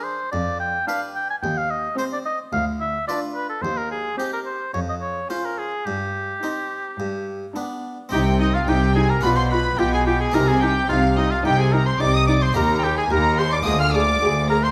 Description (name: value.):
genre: classical, baroque-style concerto movement with solo episodes.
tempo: 108 BPM.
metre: 4/4.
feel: straight.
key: C minor.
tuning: A4 = 440 Hz.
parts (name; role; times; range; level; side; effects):
warm chamber violin section; melody; 0.0-14.7 s; Eb5 to F6; -29 LUFS; equal; none.
warm oboe; melody; 0.0-14.7 s; Eb4 to Ab5; -27 LUFS; equal; none.
warm chamber violin section; second line; 0.0-14.7 s; F4 to F6; -31 LUFS; equal; none.
dark chamber viola section; accompaniment; 0.0-14.6 s; C4 to Ab4; -29 LUFS; equal; none.
harpsichord; accompaniment; 0.0-14.7 s; D2 to C5; -32 LUFS; equal; none.
warm chamber cello section; bass; 0.3-14.7 s; D2 to C3; -26 LUFS; equal; none.
dark studio double bass section; bass; 8.1-14.7 s; B1 to Eb2; -26 LUFS; equal; none.
room: moderate recital hall reverb, RT60 1.4 s.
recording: none.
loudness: -21 LUFS.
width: mono.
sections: 0.0-8.1 A section; 8.1-14.7 B section.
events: none.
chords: 0.3 G7/F; 1.4 Cm/Eb; 2.5 Bdim/D; 3.6 Cm/Eb; 4.7 Db/F; 5.9 Cm/G; 7.0 G; 8.1 Cm; 9.2 G7b9/B; 10.3 Cm; 12.6 Eb; 13.7 Bb7/D.